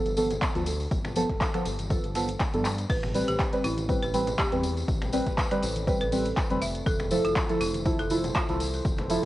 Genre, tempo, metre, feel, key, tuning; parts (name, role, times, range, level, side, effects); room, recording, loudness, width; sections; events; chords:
deep house; 121 BPM; 4/4; swing 54% on 16ths; A minor; A4 = 441 Hz
deep mellow chord stab; stabs; 0.0-9.3 s; F3 to B4; -28 LUFS; right 1 dB; chorus, phaser, sidechain pumping, cassette tape, analog delay
smooth synth bass; bass; 0.1-9.3 s; F1 to G2; -33 LUFS; equal; sidechain pumping
deep house drum kit; drums; 0.1-9.3 s; crash cymbal, finger snaps, handclaps, hi-hat; -34 LUFS; equal; overdrive, studio reverb, cassette tape
tambourine; percussion; 0.1-9.3 s; -40 LUFS; left 2 dB
dusty soul sampler-style drum kit; drums; 0.2-9.2 s; hi-hat, snare drum; -46 LUFS; equal
congas; percussion; 0.2-9.3 s; -40 LUFS; left 2 dB
electronic kick drum; drums; 0.4-9.3 s; -29 LUFS; equal; overdrive, studio reverb, cassette tape
folk marimba with hard mallets; melody; 2.9-8.6 s; E4 to E5; -34 LUFS; right 1 dB; cassette tape, analog delay
deep dark ambient pad; sustained chords; 4.4-9.3 s; F3 to C5; -38 LUFS; right 1 dB
light reverb, digital ambience; home recording on cassette, nothing above 10.9 kHz; -24 LUFS; side -16 dB against mid
0.0-9.3 A section
drum fill 2.6
0.0 G9; 2.9 Am9; 6.6 Fmaj7